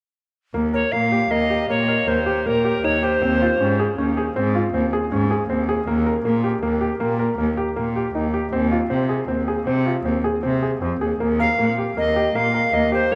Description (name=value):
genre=contemporary instrumental, contemporary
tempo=158 BPM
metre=7/4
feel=straight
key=Eb mixolydian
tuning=A4 = 439 Hz
part: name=clear concert grand piano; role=arpeggios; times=0.5-13.2 s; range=Bb3 to Bb4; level=-25 LUFS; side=equal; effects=none
part: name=rich cello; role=bass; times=0.5-13.2 s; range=Eb2 to C3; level=-25 LUFS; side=equal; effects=none
part: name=alto recorder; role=melody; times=0.7-3.8, 11.4-13.2 s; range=Bb4 to F5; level=-23 LUFS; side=equal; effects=none
room=wet cathedral reverb, RT60 4.8 s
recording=in a vast, echoing space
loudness=-21 LUFS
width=mono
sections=0.5-13.2 A section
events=none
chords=0.5 Eb7; 3.2 Dbmaj7(no3)/Eb (rootless); 5.9 Eb; 8.5 Fm7/Eb; 11.2 Eb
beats=| 0.54 0.93 1.31 1.70 2.08 2.46 2.84 | 3.22 3.60 3.98 4.36 4.74 5.12 5.50 | 5.87 6.25 6.63 7.00 7.38 7.76 8.14 | 8.52 8.90 9.28 9.66 10.05 10.43 10.82 | 11.20 11.59 11.97 12.36 12.74 13.12